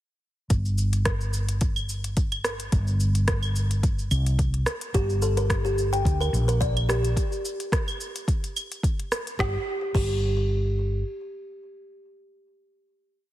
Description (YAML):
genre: organic downtempo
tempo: 108 BPM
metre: 4/4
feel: swing 54% on 16ths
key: G minor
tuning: A4 = 442 Hz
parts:
  - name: woody fretless electric bass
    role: bass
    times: 0.5-11.0 s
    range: G1 to D2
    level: -24 LUFS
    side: equal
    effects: sidechain pumping
  - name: electronic kick drum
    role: drums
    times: 0.5-10.1 s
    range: none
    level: -26 LUFS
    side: equal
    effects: overdrive
  - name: organic electronic drum kit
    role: drums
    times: 0.5-10.1 s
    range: claves, crash cymbal, hi-hat, rim click, shaker, snare drum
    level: -31 LUFS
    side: equal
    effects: none
  - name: kalimba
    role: arpeggios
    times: 4.9-10.1 s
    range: G4 to G5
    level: -29 LUFS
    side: equal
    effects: ping-pong delay
room: light reverb, digital ambience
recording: heavily compressed radio sound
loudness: -23 LUFS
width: side -14 dB against mid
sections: 0.5-9.4 groove; 9.4-11.6 final note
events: none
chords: 0.5 Gm; 9.4 N.C.